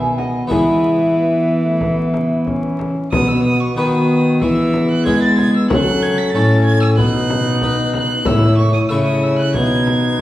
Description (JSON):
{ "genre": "classical, renaissance-style consort dance", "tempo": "93 BPM", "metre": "4/4", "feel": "straight", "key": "E major", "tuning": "A4 = 440 Hz", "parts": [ { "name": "mellow hollow baroque flute", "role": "melody", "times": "0.0-10.2 s", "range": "F#4 to G#5", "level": "-23 LUFS", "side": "left 2 dB", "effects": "none" }, { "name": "warm violin", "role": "second line", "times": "0.0-10.2 s", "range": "B4 to B6", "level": "-22 LUFS", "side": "right 2 dB", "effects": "none" }, { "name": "clear trombone", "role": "accompaniment", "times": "0.0-10.2 s", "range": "G#3 to E4", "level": "-21 LUFS", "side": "left 2 dB", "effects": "none" }, { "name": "harpsichord", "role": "accompaniment", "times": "0.0-10.2 s", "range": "A2 to C#5", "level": "-20 LUFS", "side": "equal", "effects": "none" }, { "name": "rich cello", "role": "bass", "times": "0.0-10.2 s", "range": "A2 to G#3", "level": "-18 LUFS", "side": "equal", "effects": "none" }, { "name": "frame drum", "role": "percussion", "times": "0.2-10.2 s", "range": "none", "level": "-24 LUFS", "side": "left 1 dB", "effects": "none" } ], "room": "wet recital hall reverb, RT60 1.4 s", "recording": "heard from further back in the room, vinyl crackle", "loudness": "-13 LUFS", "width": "side -14 dB against mid", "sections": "0.0-3.1 A section; 3.1-10.2 A section", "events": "none", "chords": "0.0 B; 0.5 E; 3.1 B; 4.4 E; 5.7 F#m; 7.0 B; 8.3 A; 9.6 B", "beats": "| 0.51 1.16 1.81 2.47 | 3.12 3.77 4.41 5.06 | 5.70 6.34 6.99 7.63 | 8.27 8.91 9.55 10.20" }